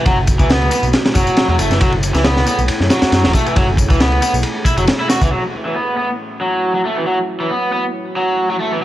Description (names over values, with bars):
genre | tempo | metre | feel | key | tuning
breakbeat, breaks | 137 BPM | 4/4 | swing 54% on 16ths | F# minor | A4 = 440 Hz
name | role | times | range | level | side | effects
deep dark ambient pad | sustained chords | 0.0-8.8 s | A3 to C#5 | -25 LUFS | equal | chorus, built-in reverb, sidechain pumping
raw garage guitar | riff | 0.0-8.8 s | E3 to F#4 | -17 LUFS | equal | overdrive, vintage 12-bit sampler grit, low-pass filter, tape echo
overdriven picked electric bass | bass | 0.1-5.3 s | E1 to F#2 | -18 LUFS | equal | none
crunchy breakbeat drum kit | drums | 0.1-5.3 s | kick drum, ride cymbal, snare drum | -16 LUFS | equal | none
tambourine | drums | 0.1-5.3 s | none | -28 LUFS | left 3 dB | low-pass filter on perc, low-pass filter on room
room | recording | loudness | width
light reverb, small room ambience | dry, gritty hardware recording, cassette tape | -13 LUFS | side -14 dB against mid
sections
0.0-5.3 A section; 5.3-8.8 B section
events
none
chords
0.0 F#m7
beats
| 0.06 0.50 0.94 1.37 | 1.81 2.25 2.69 3.13 | 3.56 4.00 4.44 4.88 | 5.32 5.75 6.19 6.63 | 7.07 7.51 7.94 8.38 | 8.82